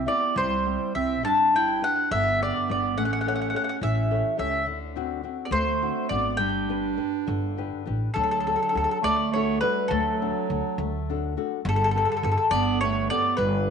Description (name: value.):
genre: italian folk, Italian serenade.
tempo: 69 BPM (dotted quarters).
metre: 6/8.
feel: rubato.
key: G major, D major from 8.2 s.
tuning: A4 = 439 Hz.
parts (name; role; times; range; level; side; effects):
mandolin; melody; 0.0-13.7 s; A4 to A5; -24 LUFS; left 2 dB; slapback echo.
clear clarinet; second line; 0.0-13.7 s; D3 to E4; -30 LUFS; right 12 dB; none.
nylon-string guitar; accompaniment; 0.0-13.7 s; D3 to C#5; -32 LUFS; left 12 dB; none.
upright bass; bass; 0.0-13.7 s; G1 to D2; -30 LUFS; equal; none.
room: moderate plate reverb, RT60 2.3 s.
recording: 1960s-style stereo with parts hard left and right, nothing above 10.8 kHz.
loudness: -22 LUFS.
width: side -6 dB against mid.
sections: 0.0-8.2 A section; 8.2-13.7 B section.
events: none.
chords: 0.0 C; 1.2 G; 3.0 A7; 4.7 D7; 6.4 G; 8.2 D; 11.7 Gadd9.